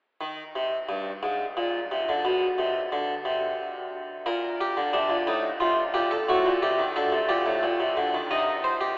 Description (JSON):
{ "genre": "classical, baroque-style 3-part fugue for harpsichord", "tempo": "59 BPM (dotted quarters)", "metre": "6/8", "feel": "straight", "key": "unclear", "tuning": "A4 = 439 Hz", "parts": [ { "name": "harpsichord", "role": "solo", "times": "0.2-9.0 s", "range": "G2 to Eb5", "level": "-23 LUFS", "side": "equal", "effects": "none" } ], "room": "wet cathedral reverb, RT60 6.6 s", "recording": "in a vast, echoing space, telephone sound", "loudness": "-23 LUFS", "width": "side -24 dB against mid", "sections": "0.2-9.0 A section", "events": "none", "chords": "0.2 N.C.; 4.3 Gm/Bb; 5.3 Am7b5; 6.3 F#dim7/A; 7.3 Gm; 8.3 Cm", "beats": "| 0.20 1.23 | 2.24 3.25 | 4.27 5.28 | 6.28 7.29 | 8.30" }